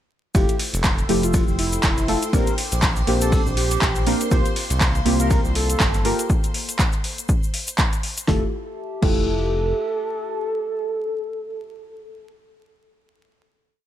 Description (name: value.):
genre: deep house.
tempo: 121 BPM.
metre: 4/4.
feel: swing 57% on 16ths.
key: F major.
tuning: A4 = 438 Hz.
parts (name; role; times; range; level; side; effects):
warm velvety synth lead; melody; 0.3-12.3 s; E4 to C5; -27 LUFS; equal; chorus, cassette tape, tape echo.
warbly tape-like pad; sustained chords; 0.8-11.6 s; Bb3 to E6; -33 LUFS; equal; chorus, built-in reverb, vintage 12-bit sampler grit, sidechain pumping.
deep mellow chord stab; stabs; 0.3-12.3 s; F3 to Bb4; -25 LUFS; right 1 dB; chorus, vintage 12-bit sampler grit, sidechain pumping.
round analog bass; bass; 0.3-9.7 s; F1 to C2; -24 LUFS; equal; sidechain pumping.
dusty soul sampler-style drum kit; drums; 0.3-6.2 s; hi-hat, ride cymbal, snare drum; -35 LUFS; right 3 dB; none.
electronic kick drum; drums; 0.3-9.2 s; none; -21 LUFS; equal; none.
tube shaker; percussion; 0.3-8.3 s; none; -32 LUFS; left 2 dB; none.
string machine, violins; texture; 0.3-8.3 s; C5 to C6; -36 LUFS; equal; ensemble chorus, sidechain pumping.
deep house drum kit; drums; 0.5-9.2 s; crash cymbal, handclaps, hi-hat, snare drum; -25 LUFS; equal; overdrive.
room: digital ambience.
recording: vinyl crackle.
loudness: -18 LUFS.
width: side -11 dB against mid.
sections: 0.3-8.3 drop; 8.3-12.2 final chord.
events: drop 0.3-8.3.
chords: 0.3 Fmaj9; 2.3 Bb69; 4.3 C7sus4; 6.0 Gm7; 8.3 Fmaj9.